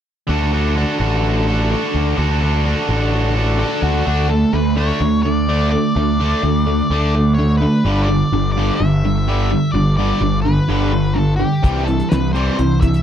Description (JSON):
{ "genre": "classic rock", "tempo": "127 BPM", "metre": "4/4", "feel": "straight", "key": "unclear", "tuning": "A4 = 440 Hz", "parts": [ { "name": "overdriven electric guitar", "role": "riff", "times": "0.3-13.0 s", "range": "G2 to A4", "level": "-17 LUFS", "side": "right 1 dB", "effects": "none" }, { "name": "fuzz picked electric bass", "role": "bass", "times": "0.3-13.0 s", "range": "G1 to D2", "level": "-18 LUFS", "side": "equal", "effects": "overdrive" }, { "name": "octave-fuzz lead guitar", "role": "melody", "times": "3.6-13.0 s", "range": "F#4 to E5", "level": "-24 LUFS", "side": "left 3 dB", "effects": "distortion, slapback echo" }, { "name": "cloth-damped thuddy drum kit", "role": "drums", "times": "11.6-13.0 s", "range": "hi-hat, kick drum, snare drum", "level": "-16 LUFS", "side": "equal", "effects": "none" } ], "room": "little or no reverb", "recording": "dry, close 1970s-style studio recording", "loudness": "-14 LUFS", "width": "side -9 dB against mid", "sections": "0.3-4.1 A section; 4.1-13.0 B section", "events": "none", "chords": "0.3 D; 4.1 D5; 7.9 G; 11.6 C", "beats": "| 0.28 0.75 1.22 1.70 | 2.17 2.65 3.12 3.59 | 4.07 4.54 5.01 5.49 | 5.96 6.43 6.91 7.38 | 7.86 8.33 8.80 9.27 | 9.75 10.22 10.69 11.17 | 11.64 12.11 12.58" }